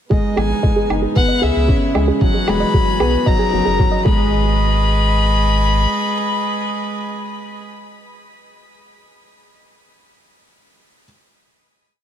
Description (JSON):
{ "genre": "piano and strings electronica", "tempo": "114 BPM", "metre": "4/4", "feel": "straight", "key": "G# minor", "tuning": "A4 = 440 Hz", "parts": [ { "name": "dark violin", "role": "melody", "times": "0.1-7.6 s", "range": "D#5 to B5", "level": "-22 LUFS", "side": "left 4 dB", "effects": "tape echo, shimmer reverb" }, { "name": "warm string quartet", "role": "sustained chords", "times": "0.1-7.6 s", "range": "C#3 to D#5", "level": "-24 LUFS", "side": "right 2 dB", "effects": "sidechain pumping, shimmer reverb" }, { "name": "soft round pluck", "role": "arpeggios", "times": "0.1-4.5 s", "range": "G#4 to D#5", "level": "-25 LUFS", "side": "right 3 dB", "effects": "chorus, vintage 12-bit sampler grit, sidechain pumping, tape echo, shimmer reverb" }, { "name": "dark upright piano", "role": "riff", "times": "0.1-11.1 s", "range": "F#3 to G#4", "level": "-20 LUFS", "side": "equal", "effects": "tape echo, shimmer reverb" }, { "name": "electronic kick drum", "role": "drums", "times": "0.1-4.2 s", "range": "none", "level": "-17 LUFS", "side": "equal", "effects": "none" }, { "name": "warm sub bass", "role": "bass", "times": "0.4-5.9 s", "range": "E1 to C#2", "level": "-18 LUFS", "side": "equal", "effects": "sidechain pumping" }, { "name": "woodblock", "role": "drums", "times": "0.4-3.1 s", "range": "none", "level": "-28 LUFS", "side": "right 4 dB", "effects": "overdrive" } ], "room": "light reverb, small room ambience", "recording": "none", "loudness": "-14 LUFS", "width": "side -10 dB against mid", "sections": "0.1-4.3 build; 4.3-8.5 final hit", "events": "build-up 0.1-4.3; filter sweep on synth arpeggio sound 0.1-4.3", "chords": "0.1 G#m; 1.2 C#m7; 2.2 Eadd9; 3.3 F#6; 4.1 G#m" }